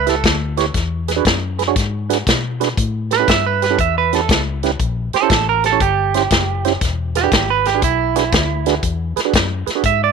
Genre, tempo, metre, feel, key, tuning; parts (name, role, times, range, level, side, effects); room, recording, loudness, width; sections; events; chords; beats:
electric blues shuffle; 119 BPM; 4/4; swing 67% on 8ths; A4 = 440 Hz
clean electric guitar; second line; 0.0-10.1 s; E4 to E5; -17 LUFS; right 11 dB
vintage muted fingered electric bass; bass; 0.0-10.1 s; E1 to B2; -22 LUFS; left 3 dB
mellow tonewheel organ; accompaniment; 0.1-9.8 s; C#4 to E5; -21 LUFS; right 14 dB; overdrive, chorus vibrato, slow rotary speaker
natural country drum kit; drums; 0.1-10.0 s; hi-hat, kick drum, snare drum; -18 LUFS; left 2 dB
light reverb, studio reverb; 1960s-style stereo; -14 LUFS; side -5 dB against mid
0.0-10.1 A section
clean electric guitar solo 0.0-10.1
0.0 A9; 0.7 E9; 2.8 A9; 4.8 A#dim7; 6.8 E9
0.24 | 0.75 1.25 1.76 2.27 | 2.77 3.28 3.78 4.29 | 4.79 5.30 5.80 6.31 | 6.81 7.32 7.82 8.33 | 8.83 9.34 9.84